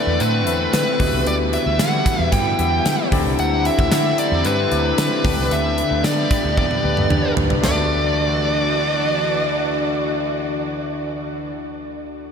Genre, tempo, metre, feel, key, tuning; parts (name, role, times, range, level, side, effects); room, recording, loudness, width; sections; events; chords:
1980s-style pop; 113 BPM; 4/4; straight; D mixolydian; A4 = 444 Hz
dark smooth lead guitar; melody; 0.0-11.5 s; B4 to G5; -21 LUFS; equal; overdrive, ping-pong delay
barky tine electric piano; accompaniment; 0.0-12.3 s; D2 to E5; -24 LUFS; left 4 dB
overdriven semi-hollow guitar; accompaniment; 0.0-11.6 s; E2 to D4; -31 LUFS; equal; wide subtle chorus
lush unison pad; sustained chords; 0.0-11.5 s; D3 to B4; -26 LUFS; right 1 dB; chorus
vintage muted fingered electric bass; bass; 0.1-11.5 s; C2 to D3; -23 LUFS; right 1 dB
gated 80s drum kit; drums; 0.2-7.8 s; hi-hat, kick drum, snare drum, splash cymbal, tambourine, toms; -23 LUFS; right 1 dB
wet huge ambient reverb, RT60 7.6 s; dreamy mix soaked in reverb; -16 LUFS; side -6 dB against mid
0.0-7.6 A section; 7.6-11.9 B section
drum fill 6.6-7.6
0.0 Amadd9; 1.0 Emadd9; 3.1 Cadd9; 5.2 G; 7.6 Dadd9